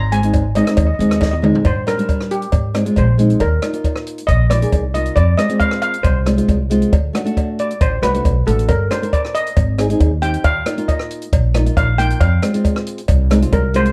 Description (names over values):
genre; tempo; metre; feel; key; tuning
calypso; 136 BPM; 4/4; straight; unclear; A4 = 440 Hz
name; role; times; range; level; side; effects
steel pan; melody; 0.0-13.9 s; G4 to Bb5; -23 LUFS; equal; plate reverb
upright bass; bass; 0.0-13.9 s; G1 to Ab2; -19 LUFS; equal; none
nylon-string guitar; accompaniment; 0.1-13.9 s; G3 to Bb4; -21 LUFS; equal; none
compact cocktail drum kit; drums; 0.1-13.9 s; hi-hat, kick drum, rim click, snare drum, toms; -22 LUFS; equal; none
cowbell; percussion; 0.3-13.6 s; none; -29 LUFS; equal; none
room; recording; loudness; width
light reverb; dark, warm production; -16 LUFS; mono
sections
0.0-1.7 A section; 1.7-13.9 B section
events
drum fill 1.2-1.7; steel pan solo 1.7-13.9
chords
0.0 Ab; 1.7 Gm; 2.5 Ab; 5.2 Fm; 6.9 D7; 8.7 Gm; 9.6 Ab; 10.4 Ebsus2; 12.2 Fm